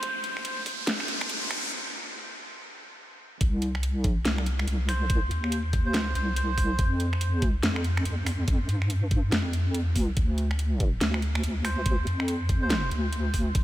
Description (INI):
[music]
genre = deep dubstep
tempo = 142 BPM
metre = 4/4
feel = swing 62% on 16ths, half-time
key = C minor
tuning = A4 = 440 Hz
[part]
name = melodica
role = melody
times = 0.0-0.1, 4.9-6.8, 11.6-12.9 s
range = C5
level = -35 LUFS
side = right 1 dB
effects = dub echo
[part]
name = dubstep drum kit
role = drums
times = 0.0-13.6 s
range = finger snaps, hi-hat, snare drum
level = -32 LUFS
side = equal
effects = small room ambience
[part]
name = electronic kick drum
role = drums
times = 0.0-13.6 s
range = none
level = -26 LUFS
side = equal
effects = high-pass filter on kick, small room ambience
[part]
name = riser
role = sound effects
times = 0.0-1.7 s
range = none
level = -35 LUFS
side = equal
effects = none
[part]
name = deep soft wobble bass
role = bass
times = 3.4-13.6 s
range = Bb1 to G2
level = -26 LUFS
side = equal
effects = chorus
[sound]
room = light reverb, digital ambience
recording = high-pass filter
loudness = -24 LUFS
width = side -14 dB against mid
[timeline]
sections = 0.0-3.4 A section; 3.4-13.6 B section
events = build-up 0.0-3.4; riser 0.0-1.7; break 1.7-3.4; drop 3.4-13.6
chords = 0.0 N.C.; 3.4 Cm; 6.8 Fsus2; 10.2 Dm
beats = | 0.03 0.45 0.87 1.29 | 1.72 2.14 2.56 2.98 | 3.41 3.83 4.25 4.67 | 5.10 5.52 5.94 6.37 | 6.79 7.21 7.63 8.05 | 8.48 8.90 9.32 9.74 | 10.17 10.59 11.01 11.44 | 11.86 12.28 12.70 13.12 | 13.55